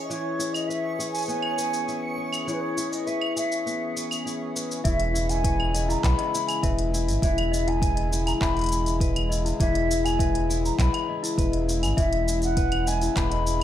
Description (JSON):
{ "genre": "folktronica", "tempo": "101 BPM", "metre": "4/4", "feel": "straight", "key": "E major", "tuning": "A4 = 440 Hz", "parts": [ { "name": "mellow baroque flute", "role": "melody", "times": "0.0-13.6 s", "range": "B4 to B5", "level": "-30 LUFS", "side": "equal", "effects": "digital delay" }, { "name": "hand-pumped harmonium", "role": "sustained chords", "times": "0.0-13.6 s", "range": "C#3 to G#4", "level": "-34 LUFS", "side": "equal", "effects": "none" }, { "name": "backwards swelling texture", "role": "texture", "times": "0.0-4.9 s", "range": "C#5 to C#6", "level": "-38 LUFS", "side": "left 1 dB", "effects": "built-in reverb" }, { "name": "flamenco guitar", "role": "arpeggios", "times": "0.1-13.6 s", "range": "E3 to B4", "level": "-30 LUFS", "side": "left 4 dB", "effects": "vintage 12-bit sampler grit, digital delay" }, { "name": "organic electronic drum kit", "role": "drums", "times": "0.1-13.6 s", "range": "claves, handclaps, hi-hat, shaker", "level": "-32 LUFS", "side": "equal", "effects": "none" }, { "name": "celesta", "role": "second line", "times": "4.8-13.6 s", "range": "E4 to G#5", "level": "-32 LUFS", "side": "left 5 dB", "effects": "digital delay" }, { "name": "warm sub bass", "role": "bass", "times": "4.8-13.6 s", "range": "E1 to B1", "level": "-26 LUFS", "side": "right 1 dB", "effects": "tube saturation" }, { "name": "electronic kick drum", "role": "drums", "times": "4.8-13.3 s", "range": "none", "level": "-26 LUFS", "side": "right 1 dB", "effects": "none" } ], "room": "light reverb, studio reverb", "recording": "none", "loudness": "-22 LUFS", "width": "side -11 dB against mid", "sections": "0.0-4.8 A section; 4.8-13.6 B section", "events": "none", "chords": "0.0 E6" }